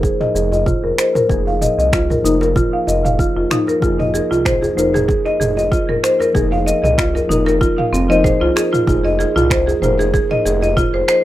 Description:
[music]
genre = organic downtempo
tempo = 95 BPM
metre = 4/4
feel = swing 54% on 16ths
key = F minor pentatonic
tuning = A4 = 440 Hz
[part]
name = muted felt-like synth keys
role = accompaniment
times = 0.0-11.2 s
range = F3 to C5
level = -22 LUFS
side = left 2 dB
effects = chorus, sidechain pumping, digital delay
[part]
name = buzzing marimba with hard mallets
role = arpeggios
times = 0.0-11.2 s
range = C4 to F5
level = -16 LUFS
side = equal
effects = low-pass filter, digital delay
[part]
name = smooth synth bass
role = bass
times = 0.0-11.0 s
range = F1 to C2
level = -21 LUFS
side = equal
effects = sidechain pumping
[part]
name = deep house drum kit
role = drums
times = 0.0-11.2 s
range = finger snaps, shaker, toms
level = -23 LUFS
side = right 1 dB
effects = overdrive
[part]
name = electronic kick drum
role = drums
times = 0.0-10.9 s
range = none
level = -19 LUFS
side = equal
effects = overdrive
[part]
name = quartz singing bowl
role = texture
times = 0.0-11.2 s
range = none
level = barely audible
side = none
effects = none
[part]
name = djembe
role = percussion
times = 0.2-10.7 s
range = none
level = -30 LUFS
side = left 1 dB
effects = none
[sound]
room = light reverb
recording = rough home demo mix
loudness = -13 LUFS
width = side -14 dB against mid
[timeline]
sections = 0.0-11.2 A section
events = filter sweep on marimba 0.0-11.2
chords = 0.0 Fm7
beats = 0.03 0.67 | 1.30 1.93 2.56 3.19 | 3.82 4.46 5.09 5.72 | 6.35 6.98 7.61 8.24 | 8.88 9.51 10.14 10.77

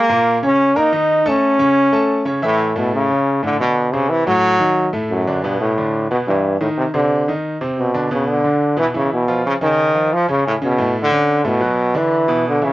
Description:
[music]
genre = latin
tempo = 180 BPM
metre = 4/4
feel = straight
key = D major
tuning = A4 = 439 Hz
[part]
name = bright trombone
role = melody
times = 0.0-12.7 s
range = F#2 to Eb4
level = -15 LUFS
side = equal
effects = none
[part]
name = bright baby grand piano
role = accompaniment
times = 0.0-12.7 s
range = A2 to Bb5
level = -21 LUFS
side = equal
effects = cassette tape
[sound]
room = moderate small room reverb, RT60 0.5 s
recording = home recording on cassette, nothing above 7.7 kHz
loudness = -14 LUFS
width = side -16 dB against mid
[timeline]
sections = 0.0-2.8 A section; 2.8-12.7 B section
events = none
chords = 0.1 Bbmadd11; 1.4 A; 2.8 D5; 4.1 F#dim; 4.8 F#m6; 5.4 Em7; 6.8 Cm; 7.4 Cmmaj7; 8.1 Bmadd11; 9.4 Aaug (rootless); 10.8 D5; 11.5 Bm7; 12.1 E5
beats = | 0.09 0.43 0.76 1.09 | 1.43 1.76 2.10 2.43 | 2.76 3.10 3.43 3.77 | 4.10 4.43 4.77 5.10 | 5.44 5.77 6.11 6.44 | 6.78 7.11 7.44 7.78 | 8.11 8.45 8.78 9.12 | 9.45 9.78 10.12 10.45 | 10.79 11.12 11.45 11.79 | 12.12 12.46

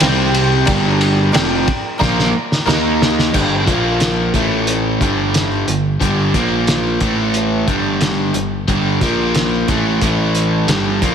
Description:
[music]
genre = classic rock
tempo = 90 BPM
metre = 4/4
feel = straight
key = G minor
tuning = A4 = 440 Hz
[part]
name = tack piano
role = accompaniment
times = 0.0-3.2 s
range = G4 to Bb5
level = -23 LUFS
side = right 3 dB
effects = slapback echo
[part]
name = crunchy overdriven guitar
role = riff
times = 0.0-11.1 s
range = F2 to Eb4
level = -18 LUFS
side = right 9 dB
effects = none
[part]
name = overdriven electric guitar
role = riff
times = 0.0-11.1 s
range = F2 to Eb4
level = -19 LUFS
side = left 9 dB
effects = none
[part]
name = picked electric bass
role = bass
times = 0.0-11.1 s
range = F1 to Eb2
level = -21 LUFS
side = left 1 dB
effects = none
[part]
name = cloth-damped thuddy drum kit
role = drums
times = 0.0-11.1 s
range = crash cymbal, hi-hat, kick drum, ride cymbal, snare drum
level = -19 LUFS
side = equal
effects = none
[sound]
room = moderate lush hall reverb, RT60 2.6 s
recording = big arena sound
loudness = -13 LUFS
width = side -7 dB against mid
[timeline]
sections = 0.0-3.3 A section; 3.3-11.1 B section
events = drum fill 2.0-3.3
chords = 0.0 C5; 0.7 Gm; 2.7 Eb5; 3.3 G5; 3.7 Bb5; 4.3 A5; 5.0 G5; 6.3 Bb5; 7.0 A5; 7.7 G5; 9.0 Bb5; 9.7 A5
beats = 0.01 | 0.67 1.34 2.00 2.67 | 3.34 4.00 4.67 5.34 | 6.01 6.67 7.34 8.01 | 8.68 9.35 10.02 10.69

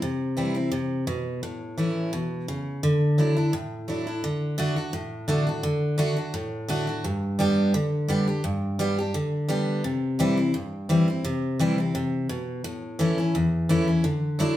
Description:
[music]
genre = bluegrass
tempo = 171 BPM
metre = 4/4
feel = straight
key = D mixolydian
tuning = A4 = 443 Hz
[part]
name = picked steel-string acoustic guitar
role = solo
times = 0.0-14.6 s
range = E2 to G4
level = -23 LUFS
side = equal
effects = none
[sound]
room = wet studio reverb, RT60 0.8 s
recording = heard from further back in the room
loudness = -23 LUFS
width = side -13 dB against mid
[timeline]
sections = 0.0-4.2 A section; 4.2-14.6 A section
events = none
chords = 0.0 C; 1.4 A; 2.8 Dadd9; 4.2 D; 7.0 G; 9.8 C; 12.7 A; 14.1 Dadd9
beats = | 0.02 0.37 0.72 1.08 | 1.43 1.78 2.13 2.48 | 2.83 3.19 3.54 3.89 | 4.24 4.59 4.94 5.29 | 5.64 5.99 6.34 6.70 | 7.05 7.40 7.75 8.10 | 8.45 8.80 9.15 9.50 | 9.85 10.20 10.55 10.90 | 11.25 11.60 11.95 12.30 | 12.65 13.00 13.35 13.70 | 14.05 14.40

